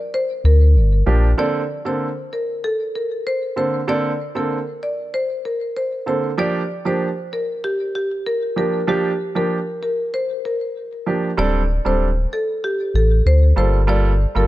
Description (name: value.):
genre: afrobeats.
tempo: 96 BPM.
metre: 4/4.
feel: straight.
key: G minor.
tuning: A4 = 440 Hz.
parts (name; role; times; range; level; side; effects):
marimba with medium mallets; melody; 0.1-14.5 s; G4 to D5; -23 LUFS; left 1 dB; ping-pong delay.
warm sub bass; bass; 0.4-1.3, 11.4-14.5 s; D1 to D2; -14 LUFS; equal; none.
warm grand piano; accompaniment; 1.1-14.5 s; D3 to A4; -21 LUFS; right 3 dB; none.
room: small room ambience.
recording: nothing above 10.4 kHz.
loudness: -17 LUFS.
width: side -16 dB against mid.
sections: 0.0-1.4 A section; 1.4-11.4 B section; 11.4-14.5 C section.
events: none.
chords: 0.0 Gm7; 1.4 Bbmaj9; 6.4 Gm7; 11.4 D7sus4; 13.6 Gm9.